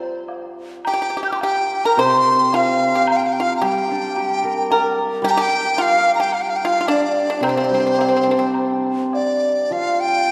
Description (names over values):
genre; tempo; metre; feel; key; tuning
chinese traditional, Chinese chamber ensemble; 108 BPM; 4/4; rubato; C shang mode; A4 = 438 Hz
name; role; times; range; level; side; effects
woodblock; percussion; 0.3-9.3 s; none; -33 LUFS; equal; none
mellow hollow dizi; melody; 0.9-10.3 s; C5 to G6; -21 LUFS; equal; none
pipa; second line; 0.9-8.5 s; C4 to C5; -25 LUFS; equal; none
hammered dulcimer; accompaniment; 2.0-10.3 s; C3 to D5; -26 LUFS; equal; none
room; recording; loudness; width
wet church reverb, RT60 3.5 s; recorded in a church or concert hall, lossy compression artefacts; -18 LUFS; mono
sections
0.0-9.7 A section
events
none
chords
none